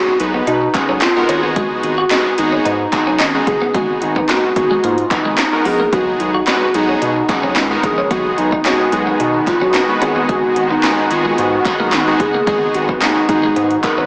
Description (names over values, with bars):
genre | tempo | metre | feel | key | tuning
dance-pop | 110 BPM | 4/4 | straight | unclear | A4 = 440 Hz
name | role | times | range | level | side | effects
hollow clarinet-like synth lead | melody | 0.0-14.1 s | Db4 to Cb5 | -20 LUFS | equal | chorus, tape echo
big bright polysynth | accompaniment | 0.0-14.1 s | G#3 to B4 | -22 LUFS | equal | sidechain pumping
twelve-string electric guitar | riff | 0.0-14.1 s | Ab3 to Gb4 | -26 LUFS | equal | lush chorus
saturated sub bass | bass | 0.2-14.1 s | Gb1 to B2 | -26 LUFS | equal | sidechain pumping
house drum kit | drums | 0.2-14.0 s | handclaps, hi-hat, kick drum, snare drum | -24 LUFS | equal | overdrive
group handclap | percussion | 0.7-14.0 s | none | -25 LUFS | equal | none
soft supersaw | sustained chords | 5.9-14.1 s | D#3 to F#4 | -24 LUFS | equal | ensemble chorus, sidechain pumping
room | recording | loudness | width
moderate lush hall reverb, RT60 1.9 s | dreamy mix soaked in reverb, small speaker sound | -15 LUFS | mono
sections
0.0-14.1 A section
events
none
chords
0.0 B6; 1.3 Abm7; 5.9 B6; 10.0 Abm7